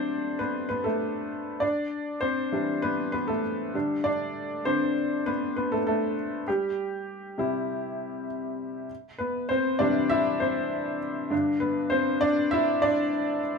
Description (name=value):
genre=pop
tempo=99 BPM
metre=4/4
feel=straight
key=G major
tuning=A4 = 441 Hz
part: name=clear upright piano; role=solo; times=0.0-13.6 s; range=G2 to E5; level=-25 LUFS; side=left 1 dB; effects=none
room=moderate small room reverb, RT60 0.6 s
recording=band playing live in one room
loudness=-25 LUFS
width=side -5 dB against mid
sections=0.0-8.9 A section; 8.9-13.6 B section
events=upright piano solo 0.0-8.9, 8.9-13.6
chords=0.0 D; 1.6 Em7; 3.7 G/D; 6.5 C; 11.3 G